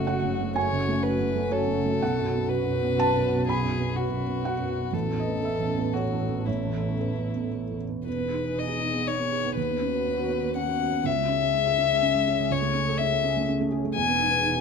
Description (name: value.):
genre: neoclassical piano and strings.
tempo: 111-127 BPM.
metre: 3/4.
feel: rubato.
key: E major.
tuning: A4 = 441 Hz.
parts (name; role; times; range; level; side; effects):
dark violin; melody; 0.0-14.6 s; E4 to G#5; -27 LUFS; left 7 dB; none.
felt-muted upright piano; accompaniment; 0.0-14.6 s; A1 to B5; -28 LUFS; right 5 dB; none.
dark analog pad; sustained chords; 0.0-14.6 s; G#3 to A4; -35 LUFS; left 1 dB; chorus.
warm double bass; bass; 0.0-14.6 s; E1 to D#2; -32 LUFS; equal; none.
room: light reverb.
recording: minimal, uncompressed stereo recording.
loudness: -23 LUFS.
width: side -6 dB against mid.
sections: 0.0-8.1 A section; 8.1-14.6 B section.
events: none.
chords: 0.0 F#m; 2.0 Bsus2; 4.9 Aadd9; 8.1 Emaj7; 9.6 Badd9/D#; 11.1 C#m; 12.5 Amaj7/C#; 14.0 Emaj7.